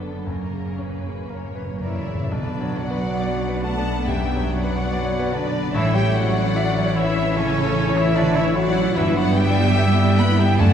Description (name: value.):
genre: classical.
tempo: 57-77 BPM.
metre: 4/4.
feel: rubato.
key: B minor.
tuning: A4 = 440 Hz.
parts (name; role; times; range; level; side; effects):
bright grand piano; melody; 0.0-10.7 s; B1 to G5; -25 LUFS; left 2 dB; none.
warm symphonic violin section; second line; 0.0-10.7 s; A4 to G5; -31 LUFS; left 2 dB; none.
warm symphonic viola section; accompaniment; 0.0-10.7 s; A#3 to E4; -30 LUFS; equal; none.
rich symphonic cello section; bass; 0.0-10.7 s; F#2 to B3; -27 LUFS; right 3 dB; none.
warm symphonic double bass section; bass; 0.0-10.7 s; F#1 to B1; -25 LUFS; right 2 dB; none.
timpani; percussion; 0.3-2.3 s; F#2; -32 LUFS; equal; none.
dark symphonic violin section; melody; 1.8-10.7 s; C#5 to B5; -30 LUFS; left 2 dB; none.
mellow cor anglais; second line; 1.8-10.7 s; C#4 to B4; -31 LUFS; right 1 dB; none.
silver concert flute; second line; 1.8-10.7 s; C#5 to B5; -32 LUFS; equal; none.
mellow French horn section; sustained chords; 1.8-10.7 s; C#3 to B3; -28 LUFS; left 1 dB; none.
mellow tuba; bass; 2.3-10.7 s; F#1 to B1; -28 LUFS; equal; none.
clear clarinet; second line; 4.1-10.7 s; B4 to E5; -31 LUFS; left 3 dB; none.
room: wet scoring stage reverb, RT60 2.1 s.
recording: heard from further back in the room.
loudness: -18 LUFS.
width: side -8 dB against mid.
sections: 0.0-2.3 A section; 2.3-10.7 B section.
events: timpani fill 0.3-2.3.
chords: 0.3 F#; 2.3 Bm; 5.7 A; 9.0 G6.